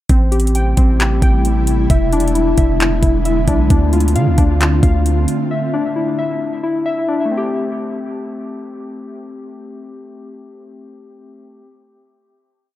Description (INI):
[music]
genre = hip hop, atmospheric cloud-rap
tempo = 133 BPM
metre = 4/4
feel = half-time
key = A minor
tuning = A4 = 440 Hz
[part]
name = ethereal airy pad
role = sustained chords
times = 0.6-5.5 s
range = C3 to F4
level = -20 LUFS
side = left 1 dB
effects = ensemble chorus, built-in reverb, sidechain pumping
[part]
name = warbly lo-fi synth keys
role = arpeggios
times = 0.1-11.7 s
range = A3 to G5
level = -20 LUFS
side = left 2 dB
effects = chorus, dub echo
[part]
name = long sustained 808-style bass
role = bass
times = 0.1-5.3 s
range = E1 to D3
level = -15 LUFS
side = equal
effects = none
[part]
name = smooth R&B drum kit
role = drums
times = 0.1-5.4 s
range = handclaps, hi-hat, kick drum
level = -16 LUFS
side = equal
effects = none
[sound]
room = digital ambience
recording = echo-heavy mix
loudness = -13 LUFS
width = side -14 dB against mid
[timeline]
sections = 0.1-7.3 verse; 7.3-10.9 final chord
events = none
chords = 0.1 Am7; 1.9 E7; 3.7 Dm7; 5.5 Dsus2; 7.3 Am7